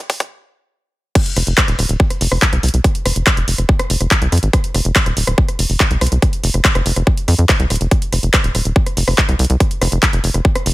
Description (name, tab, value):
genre	psychedelic trance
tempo	142 BPM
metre	4/4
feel	straight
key	unclear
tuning	A4 = 440 Hz
part	big-room dance drum kit	drums	0.1-10.7 s	crash cymbal, handclaps, hi-hat, rim click	-18 LUFS	equal	overdrive, high-pass filter on hats, small room reverb, high-pass filter on cymbals, high-pass filter on snare
part	electronic kick drum	drums	0.1-10.5 s	none	-15 LUFS	equal	overdrive, high-pass filter on kick, small room reverb
part	tight sequencer bass	bass	1.4-10.7 s	Eb1 to F2	-16 LUFS	equal	none
room	little or no reverb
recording	none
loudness	-13 LUFS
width	side -18 dB against mid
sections	0.0-1.2 A section; 1.2-10.7 B section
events	build-up 0.0-1.2; drum fill 0.0-0.3; stop 0.3-1.2; drop 1.2-10.7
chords	none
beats	0.31 0.73 | 1.15 1.58 2.00 2.42 | 2.84 3.27 3.69 4.11 | 4.53 4.96 5.38 5.80 | 6.22 6.65 7.07 7.49 | 7.91 8.34 8.76 9.18 | 9.60 10.03 10.45